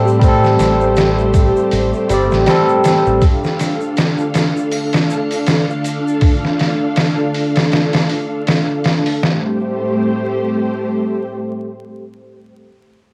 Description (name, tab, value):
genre	trip hop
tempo	80 BPM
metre	4/4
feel	swing 57% on 16ths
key	A minor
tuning	A4 = 438 Hz
part	barky tine electric piano	accompaniment	0.0-3.2 s	G3 to D5	-18 LUFS	equal	harmonic tremolo, cassette tape, tape echo
part	string machine, cellos	sustained chords	0.0-12.5 s	A3 to F5	-21 LUFS	equal	ensemble chorus, cassette tape
part	deep dub fingered electric bass	bass	0.0-3.2 s	G1 to A2	-20 LUFS	equal	none
part	egg shaker and triangle	percussion	0.1-6.2 s	none	-39 LUFS	equal	none
part	trip hop sampler-style drum kit	drums	0.2-9.4 s	hi-hat, kick drum, snare drum	-18 LUFS	equal	overdrive, studio reverb
room	light reverb, digital ambience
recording	home recording on cassette, vinyl crackle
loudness	-16 LUFS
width	mono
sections	0.0-9.2 A section; 9.2-12.2 B section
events	none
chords	0.0 Am7; 3.2 Dm; 9.2 Am7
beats	| 0.22 0.97 1.72 2.47 | 3.22 3.97 4.72 5.47 | 6.22 6.97 7.72 8.47 | 9.22 9.97 10.72 11.47